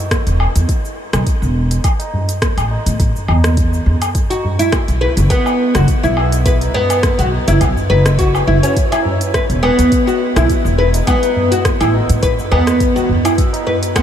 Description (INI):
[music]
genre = organic downtempo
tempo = 104 BPM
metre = 4/4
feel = swing 54% on 16ths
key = unclear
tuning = A4 = 440 Hz
[part]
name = electronic kick drum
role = drums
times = 0.1-14.0 s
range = none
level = -17 LUFS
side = equal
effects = overdrive
[part]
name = organic electronic drum kit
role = drums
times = 0.1-14.0 s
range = cabasa, hi-hat, rim click, woodblock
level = -22 LUFS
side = equal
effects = overdrive
[part]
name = upright bass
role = bass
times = 0.3-13.2 s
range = E1 to A2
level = -15 LUFS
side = equal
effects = sidechain pumping
[part]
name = tabla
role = percussion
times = 0.8-13.8 s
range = none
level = -24 LUFS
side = right 1 dB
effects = none
[part]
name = oud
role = arpeggios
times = 4.3-14.0 s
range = B3 to B4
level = -16 LUFS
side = equal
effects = analog delay
[sound]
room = moderate huge ambient reverb, RT60 8.1 s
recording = dreamy mix soaked in reverb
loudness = -12 LUFS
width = side -9 dB against mid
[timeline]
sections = 0.0-14.0 A section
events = none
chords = 0.0 E5; 1.8 A5; 4.2 B5; 8.8 E5; 11.1 Asus2; 13.4 B5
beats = 0.11 0.69 1.26 | 1.84 2.42 3.00 3.57 | 4.15 4.73 5.30 5.88 | 6.46 7.03 7.61 8.19 | 8.77 9.34 9.92 10.50 | 11.07 11.65 12.23 12.80 | 13.38 13.96